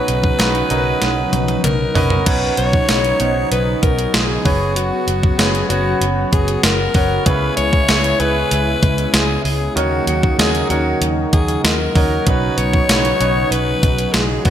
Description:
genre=1980s-style pop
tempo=96 BPM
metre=4/4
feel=straight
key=B major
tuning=A4 = 442 Hz
part: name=raspy alto saxophone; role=melody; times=0.0-14.5 s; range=F#4 to C#5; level=-20 LUFS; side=left 3 dB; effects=none
part: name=clear concert grand piano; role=accompaniment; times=0.0-14.5 s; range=B2 to C#5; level=-21 LUFS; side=right 2 dB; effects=lush chorus
part: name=brassy analog pad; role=sustained chords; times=0.0-14.5 s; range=C#3 to F#4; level=-24 LUFS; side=equal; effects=chorus
part: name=vintage muted fingered electric bass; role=bass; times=0.1-14.5 s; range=F#1 to D#2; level=-21 LUFS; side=equal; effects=none
part: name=clean 12-bit digital drum machine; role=drums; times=0.1-14.5 s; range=crash cymbal, hi-hat, kick drum, snare drum, tambourine, toms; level=-17 LUFS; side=equal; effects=gated reverb
part: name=group handclap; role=percussion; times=0.4-1.8, 12.9-14.3 s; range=none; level=-34 LUFS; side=left 6 dB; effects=none
room=moderate plate reverb, RT60 1.9 s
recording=bright 1980s-style digital production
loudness=-14 LUFS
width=side -10 dB against mid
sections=0.0-2.3 A section; 2.3-14.5 A section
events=drum fill 1.0-2.3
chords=0.0 Badd9; 4.5 F#sus4; 7.3 C#m7; 9.8 D#m7; 12.3 Badd9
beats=0.39 1.02 1.64 | 2.27 2.89 3.52 4.14 | 4.77 5.39 6.02 6.64 | 7.27 7.89 8.52 9.14 | 9.77 10.39 11.02 11.64 | 12.27 12.89 13.52 14.14

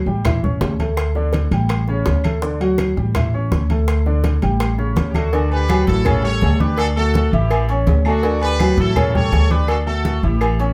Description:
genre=latin, salsa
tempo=165 BPM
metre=4/4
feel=straight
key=D major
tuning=A4 = 445 Hz
part: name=warm grand piano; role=accompaniment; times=0.1-10.7 s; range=C#3 to D6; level=-24 LUFS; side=equal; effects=none
part: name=upright bass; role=bass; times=0.1-10.7 s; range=A1 to D2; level=-20 LUFS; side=equal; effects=none
part: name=congas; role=percussion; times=0.1-10.7 s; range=none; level=-25 LUFS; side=equal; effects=none
part: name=claves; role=percussion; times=0.2-10.6 s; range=none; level=-37 LUFS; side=equal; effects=none
part: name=timbales and agogo bells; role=percussion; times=0.2-10.7 s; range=none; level=-30 LUFS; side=equal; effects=none
part: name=bongos and cowbell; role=percussion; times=0.3-10.7 s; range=none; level=-29 LUFS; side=equal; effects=none
part: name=bright horn section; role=melody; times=5.1-10.6 s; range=D4 to C#5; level=-26 LUFS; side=equal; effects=none
room=wet studio reverb, RT60 0.5 s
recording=heard from further back in the room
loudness=-18 LUFS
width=mono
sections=0.0-5.3 A section; 5.3-10.7 B section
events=none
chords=0.2 A; 1.0 D5; 1.7 A7; 2.4 D; 3.2 A; 3.9 D5; 4.6 A7; 5.3 D; 6.1 A7; 6.8 D; 7.5 A; 8.2 D; 9.0 A7; 9.7 D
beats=0.25 0.61 | 0.98 1.34 1.70 2.07 | 2.43 2.79 3.15 3.52 | 3.88 4.24 4.61 4.97 | 5.33 5.70 6.06 6.42 | 6.78 7.15 7.51 7.87 | 8.23 8.60 8.96 9.32 | 9.69 10.05 10.41

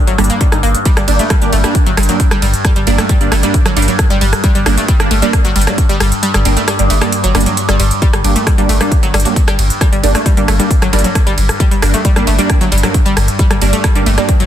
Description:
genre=driving peak-time techno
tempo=134 BPM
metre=4/4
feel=straight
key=G harmonic minor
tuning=A4 = 439 Hz
part: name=overtone-sweeping drone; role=drone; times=0.0-14.5 s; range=G2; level=-20 LUFS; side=left 1 dB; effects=chorus, built-in reverb, sidechain pumping
part: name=analog pluck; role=riff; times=0.1-14.4 s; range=F#3 to Eb4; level=-18 LUFS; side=left 1 dB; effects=chorus, sidechain pumping, digital delay
part: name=saturated sub bass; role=bass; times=0.1-14.5 s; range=G1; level=-16 LUFS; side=equal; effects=tube saturation, sidechain pumping, low-pass filter
part: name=techno drum kit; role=drums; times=0.1-14.5 s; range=hi-hat, ride cymbal, rim click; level=-18 LUFS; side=right 1 dB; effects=sidechain pumping on hats, sidechain pumping on cymbals, soft clipping on snare
part: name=rave stab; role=stabs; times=0.2-14.3 s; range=G3 to D4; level=-18 LUFS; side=right 4 dB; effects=chorus, built-in reverb, vintage 12-bit sampler grit, sidechain pumping, digital delay
part: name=electronic kick drum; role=drums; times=0.4-14.4 s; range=none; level=-13 LUFS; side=equal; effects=none
room=light reverb, digital ambience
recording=dense, heavily limited modern master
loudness=-10 LUFS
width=side -10 dB against mid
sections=0.0-14.5 A section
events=kick drops out 6.2-8.0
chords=0.0 Gm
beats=0.41 | 0.85 1.30 1.75 2.20 | 2.65 3.09 3.54 3.99 | 4.44 4.88 5.33 5.78 | 6.23 6.68 7.12 7.57 | 8.02 8.47 8.91 9.36 | 9.81 10.26 10.71 11.15 | 11.60 12.05 12.50 12.94 | 13.39 13.84 14.29

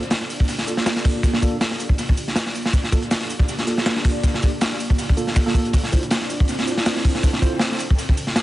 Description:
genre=drum and bass, jungle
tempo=160 BPM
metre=4/4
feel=swing 55% on 16ths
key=G dorian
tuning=A4 = 443 Hz
part: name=crunchy breakbeat drum kit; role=drums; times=0.0-8.4 s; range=hi-hat, kick drum, snare drum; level=-19 LUFS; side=equal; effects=dub echo
part: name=dusty soul sampler-style drum kit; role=drums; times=0.0-8.4 s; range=hi-hat, shaker, snare drum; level=-33 LUFS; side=right 2 dB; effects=high-pass filter on perc, high-pass filter on hats, high-pass filter on snare, high-pass filter on room, dub echo
part: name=mellow tine electric piano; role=stabs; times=0.7-7.6 s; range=Bb3 to C5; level=-28 LUFS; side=right 2 dB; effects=medium stereo tremolo, low-pass filter, dub echo
room=light reverb, small room ambience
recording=echo-heavy mix, vinyl crackle, nothing above 10.9 kHz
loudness=-18 LUFS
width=side -16 dB against mid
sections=0.0-8.4 A section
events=build-up 0.0-8.4; filter sweep on tine electric piano 0.0-8.4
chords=0.0 Gm7; 5.7 Dm7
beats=0.11 0.49 0.86 | 1.24 1.61 1.99 2.36 | 2.74 3.11 3.49 3.86 | 4.24 4.61 4.99 5.36 | 5.74 6.11 6.49 6.86 | 7.24 7.61 7.99 8.36

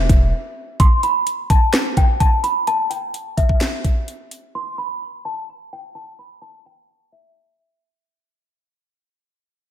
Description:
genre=hip hop, trap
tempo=128 BPM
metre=4/4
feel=half-time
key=unclear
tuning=A4 = 440 Hz
part: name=small celesta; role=melody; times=0.0-8.3 s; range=E5 to C6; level=-22 LUFS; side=equal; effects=low-pass filter, analog delay
part: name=trap drum kit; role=drums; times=0.1-4.4 s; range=handclaps, hi-hat, kick drum, rim click, snare drum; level=-15 LUFS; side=equal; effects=none
room=light reverb, digital ambience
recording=none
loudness=-16 LUFS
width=side -10 dB against mid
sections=0.8-8.3 A section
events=break 0.3-0.8; fade-out 0.8-8.3; filter sweep on celesta 0.8-8.3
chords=none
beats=0.33 | 0.80 1.27 1.74 2.20 | 2.67 3.14 3.61 4.08 | 4.55 5.02 5.49 5.95 | 6.42 6.89 7.36 7.83

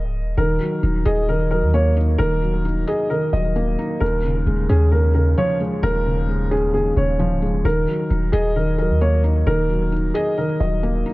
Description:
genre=hip hop, trap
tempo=132 BPM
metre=4/4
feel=half-time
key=Eb minor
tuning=A4 = 440 Hz
part: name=dark concert grand piano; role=melody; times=0.0-11.1 s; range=Ab4 to Eb5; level=-23 LUFS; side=right 1 dB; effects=low-pass filter, analog delay
part: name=warm 808-style bass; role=bass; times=0.0-11.0 s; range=Db1 to Eb2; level=-19 LUFS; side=equal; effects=none
part: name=felt-muted upright piano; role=accompaniment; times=0.4-11.1 s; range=Eb2 to Eb5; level=-22 LUFS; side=left 1 dB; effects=low-pass filter, analog delay
room=small room ambience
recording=echo-heavy mix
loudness=-17 LUFS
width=side -19 dB against mid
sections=0.4-11.1 A section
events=none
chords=0.4 Ebm; 4.0 Db/Eb; 7.6 Ebm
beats=| 0.37 0.83 1.28 1.74 | 2.19 2.65 3.10 3.56 | 4.01 4.46 4.92 5.37 | 5.83 6.28 6.74 7.19 | 7.65 8.10 8.56 9.01 | 9.46 9.92 10.37 10.83

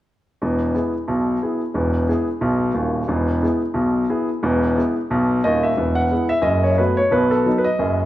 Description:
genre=jazz, stride piano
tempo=178 BPM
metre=4/4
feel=swing 59% on 8ths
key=E major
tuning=A4 = 440 Hz
part: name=warm grand piano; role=solo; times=0.4-8.1 s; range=D#1 to F#5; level=-17 LUFS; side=equal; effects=none
room=moderate recital hall reverb, RT60 1.4 s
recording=minimal, uncompressed stereo recording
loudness=-17 LUFS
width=side -14 dB against mid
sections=0.4-5.8 A section; 5.8-8.1 B section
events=none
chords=0.4 E; 6.5 B5/F#; 7.1 B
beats=| 0.40 0.73 1.07 1.41 | 1.74 2.08 2.42 2.75 | 3.09 3.43 3.76 4.10 | 4.44 4.77 5.11 5.45 | 5.78 6.12 6.45 6.79 | 7.13 7.46 7.80

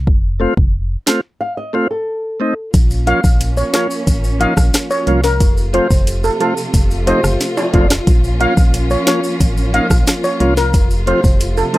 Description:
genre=dancehall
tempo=90 BPM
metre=4/4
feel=straight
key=Bb harmonic minor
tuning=A4 = 444 Hz
part: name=organ-like FM bass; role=bass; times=0.0-11.6 s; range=F1 to C2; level=-17 LUFS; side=equal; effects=tube saturation
part: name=afro-pop drum kit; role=drums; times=0.1-11.8 s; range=hi-hat, kick drum, rim click, snare drum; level=-14 LUFS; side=equal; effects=none
part: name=tonewheel organ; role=accompaniment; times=0.4-11.8 s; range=F3 to F4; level=-15 LUFS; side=equal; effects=slow rotary speaker
part: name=flamenco guitar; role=arpeggios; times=1.4-2.7 s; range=A4 to F5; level=-22 LUFS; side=left 1 dB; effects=none
part: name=dark studio string section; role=sustained chords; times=2.7-11.8 s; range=C3 to F4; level=-22 LUFS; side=equal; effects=sidechain pumping
part: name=maracas and timbales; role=percussion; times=2.7-11.7 s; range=none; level=-26 LUFS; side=right 1 dB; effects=none
part: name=steel pan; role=melody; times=3.1-11.8 s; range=A4 to F5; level=-19 LUFS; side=equal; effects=none
room=little or no reverb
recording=dry, gritty hardware recording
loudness=-12 LUFS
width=side -17 dB against mid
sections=0.0-2.7 A section; 2.7-11.8 B section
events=break 1.4-2.7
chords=0.1 F; 2.7 Bbm; 5.4 F; 8.1 Bbm; 10.7 F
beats=| 0.07 0.74 1.41 2.07 | 2.74 3.41 4.07 4.74 | 5.41 6.07 6.74 7.41 | 8.07 8.74 9.41 10.07 | 10.74 11.41

